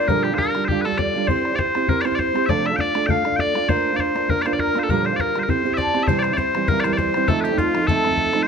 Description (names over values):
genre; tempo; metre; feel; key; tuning
celtic folk, Celtic reel; 200 BPM; 4/4; swing 54% on 8ths; C mixolydian; A4 = 439 Hz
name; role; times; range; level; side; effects
loud bright bagpipes; melody; 0.0-8.5 s; F4 to G5; -22 LUFS; left 1 dB; none
mellow baroque flute; second line; 0.0-8.2 s; F4 to F5; -26 LUFS; left 4 dB; none
fingerpicked steel-string acoustic guitar; accompaniment; 0.0-8.5 s; Bb2 to C5; -23 LUFS; right 7 dB; none
bodhran; percussion; 0.1-8.4 s; none; -26 LUFS; left 4 dB; none
Irish bouzouki; second line; 5.8-8.3 s; F3 to D4; -28 LUFS; equal; none
room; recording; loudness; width
light reverb; close, detailed microphones; -18 LUFS; side -6 dB against mid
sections
0.0-6.1 A section; 6.1-8.5 A section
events
none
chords
0.1 Gm7/Bb; 1.3 C; 2.5 F6/C; 3.7 Bb; 4.9 Gm7/Bb; 5.5 C; 7.3 F7